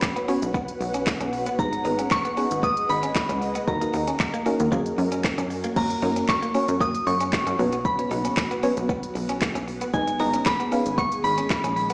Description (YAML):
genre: dance-pop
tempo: 115 BPM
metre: 4/4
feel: straight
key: F# major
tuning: A4 = 437 Hz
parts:
  - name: soft synth bell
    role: melody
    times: 0.0-11.9 s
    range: G#5 to D#6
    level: -26 LUFS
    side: equal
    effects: chorus
  - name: ethereal airy pad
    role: sustained chords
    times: 0.0-11.9 s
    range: C#3 to F#5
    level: -31 LUFS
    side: equal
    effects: ensemble chorus, built-in reverb, sidechain pumping
  - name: clean electric guitar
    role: riff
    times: 0.0-11.9 s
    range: A#3 to D#4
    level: -31 LUFS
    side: equal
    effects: lush chorus
  - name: smooth R&B drum kit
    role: drums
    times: 0.0-11.9 s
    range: crash cymbal, handclaps, hi-hat, kick drum, shaker, snare drum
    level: -27 LUFS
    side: equal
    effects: none
  - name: soft round pluck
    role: accompaniment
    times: 0.3-11.3 s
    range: A#3 to E#5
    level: -27 LUFS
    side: equal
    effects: chorus
  - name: plucky analog bass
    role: bass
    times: 0.4-11.9 s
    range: G#1 to F#2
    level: -29 LUFS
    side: equal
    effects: sidechain pumping
room: moderate plate reverb, RT60 1.5 s, digital ambience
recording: played on a big sound system in a bare room, stone room reverb, small speaker sound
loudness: -21 LUFS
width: side -31 dB against mid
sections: 0.0-5.8 A section; 5.8-11.9 A section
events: none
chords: 0.0 Bsus2; 1.6 G#m; 3.7 D#m; 4.7 F#add9; 5.8 F#; 7.6 Bsus2; 9.9 G#m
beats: 0.02 0.55 1.07 | 1.59 2.11 2.63 3.15 | 3.68 4.20 4.72 5.24 | 5.76 6.29 6.81 7.33 | 7.85 8.37 8.89 9.42 | 9.94 10.46 10.98 11.50